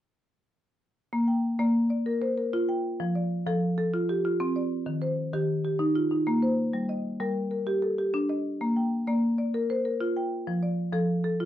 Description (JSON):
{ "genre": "southern african traditional", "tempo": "128 BPM (dotted quarters)", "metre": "12/8", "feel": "straight", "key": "Bb major", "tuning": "A4 = 440 Hz", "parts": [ { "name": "marimba with medium mallets", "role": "arpeggios", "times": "1.1-11.5 s", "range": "Eb3 to G5", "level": "-25 LUFS", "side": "equal", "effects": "none" } ], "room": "moderate small room reverb, RT60 0.5 s", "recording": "worn, warbling old tape, cassette tape, warbly pitch drift", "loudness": "-25 LUFS", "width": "side -12 dB against mid", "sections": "1.1-11.5 A section", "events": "none", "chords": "1.1 Bb; 3.0 F; 4.9 Eb; 6.7 Gm; 8.6 Bb; 10.5 F" }